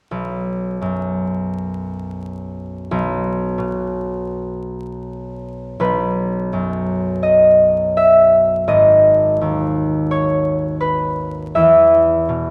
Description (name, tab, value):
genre	classical, solo harp piece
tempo	84 BPM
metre	4/4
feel	uneven beats, rubato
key	B major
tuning	A4 = 440 Hz
part	concert harp	solo	0.1-12.5 s	G#1 to E5	-17 LUFS	equal	none
room	moderate concert hall reverb, RT60 1.8 s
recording	vinyl crackle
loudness	-16 LUFS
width	mono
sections	0.1-5.8 A section; 5.8-12.5 B section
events	none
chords	0.1 B5; 2.9 N.C.; 5.8 B; 8.7 G#m; 11.6 Emaj7(no3)